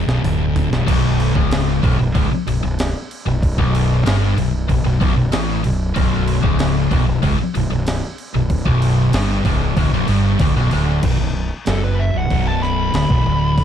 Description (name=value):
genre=stoner and doom metal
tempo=94 BPM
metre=4/4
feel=straight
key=B minor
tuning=A4 = 440 Hz
part: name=thick fuzz guitar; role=riff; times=0.0-13.6 s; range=B1 to A2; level=-21 LUFS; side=left 8 dB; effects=distortion
part: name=thick fuzz guitar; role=riff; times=0.0-13.6 s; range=B1 to A2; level=-22 LUFS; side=right 8 dB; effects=distortion
part: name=fuzz fingered electric bass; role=bass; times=0.0-13.6 s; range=B0 to A1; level=-21 LUFS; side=equal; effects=overdrive
part: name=breakbeat sampler-style drum kit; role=drums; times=0.1-13.6 s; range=crash cymbal, hi-hat, kick drum, snare drum, toms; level=-22 LUFS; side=equal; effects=none
part: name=biting overdriven guitar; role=riff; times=0.9-11.0 s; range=B1 to A2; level=-23 LUFS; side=equal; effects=none
part: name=fuzz lead guitar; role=melody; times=11.7-13.6 s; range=A4 to B5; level=-22 LUFS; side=equal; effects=distortion, ping-pong delay
room=little or no reverb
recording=dark, warm production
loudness=-15 LUFS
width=side -9 dB against mid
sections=0.9-11.0 A section; 11.0-13.6 B section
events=drum fill 0.0-0.9; kick and snare drop out 10.4-11.0; lead electric guitar solo 11.0-13.6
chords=0.0 Bm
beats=0.23 | 0.87 1.51 2.15 2.78 | 3.42 4.05 4.69 5.33 | 5.96 6.60 7.23 7.87 | 8.50 9.13 9.77 10.40 | 11.04 11.68 12.31 12.95 | 13.58